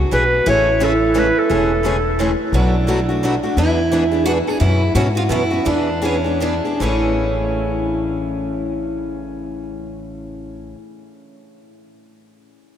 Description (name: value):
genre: acoustic string swing (jazz manouche)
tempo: 147-174 BPM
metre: 3/4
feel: swing 60% on 8ths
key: A major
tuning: A4 = 440 Hz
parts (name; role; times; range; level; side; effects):
- picked steel-string acoustic guitar; second line; 0.0-10.7 s; C#4 to G#4; -21 LUFS; right 3 dB; none
- upright bass; bass; 0.0-10.7 s; E1 to G#2; -22 LUFS; equal; none
- clear clarinet; melody; 0.1-2.4 s; A4 to C#5; -21 LUFS; left 1 dB; none
- picked steel-string acoustic guitar; accompaniment; 0.1-10.8 s; A2 to G#4; -23 LUFS; left 4 dB; none
- picked steel-string acoustic guitar; accompaniment; 0.1-10.8 s; A2 to B4; -27 LUFS; right 4 dB; none
room: wet cathedral reverb, RT60 6.4 s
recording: in a vast, echoing space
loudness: -15 LUFS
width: side -9 dB against mid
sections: 0.0-2.5 A section; 2.5-6.8 B section; 6.8-9.3 C section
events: slowing down 4.6-6.8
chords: 0.5 Amaj7; 2.5 Bm7; 3.6 E7; 4.6 F#7sus4; 5.7 E7; 6.8 Amaj7